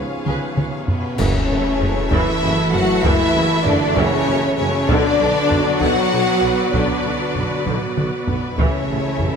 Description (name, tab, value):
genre	cinematic, epic orchestral film score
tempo	65 BPM (dotted quarters)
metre	6/8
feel	straight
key	F# minor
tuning	A4 = 439 Hz
part	warm symphonic violin section	melody	0.0-9.4 s	Cb5 to F#5	-25 LUFS	left 4 dB	none
part	warm symphonic violin section	second line	0.0-9.4 s	Cb4 to Db5	-25 LUFS	left 1 dB	none
part	rich symphonic viola section	accompaniment	0.0-9.4 s	C#3 to Cb5	-26 LUFS	equal	none
part	mellow French horn section	sustained chords	0.0-9.4 s	Cb4 to F#4	-24 LUFS	left 4 dB	none
part	mellow trombone section	sustained chords	0.0-9.4 s	Ab2 to B3	-27 LUFS	right 4 dB	none
part	rich symphonic string section	sustained chords	0.0-9.4 s	A3 to E5	-26 LUFS	right 1 dB	none
part	rich symphonic cello section	bass	0.0-9.4 s	Cb3 to F#3	-25 LUFS	right 1 dB	none
part	rich symphonic double bass section	bass	0.0-9.3 s	A1 to F#2	-27 LUFS	right 3 dB	none
part	taiko ensemble	drums	0.3-9.4 s	none	-23 LUFS	equal	none
part	warm tuba	bass	1.2-9.3 s	F#1 to B1	-28 LUFS	right 3 dB	none
part	clash cymbals and concert bass drum	percussion	1.2-2.4 s	none	-29 LUFS	equal	none
room	wet scoring stage reverb, RT60 1.6 s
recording	none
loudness	-16 LUFS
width	side -6 dB against mid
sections	0.0-1.2 A section; 1.2-9.4 B section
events	drum fill 0.3-1.2, 7.7-8.6; band accent 1.2-1.8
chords	0.0 Db7; 1.2 F#m7; 4.9 Bm; 8.6 A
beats	0.27 | 1.19 2.11 | 3.04 3.96 | 4.88 5.80 | 6.73 7.65 | 8.57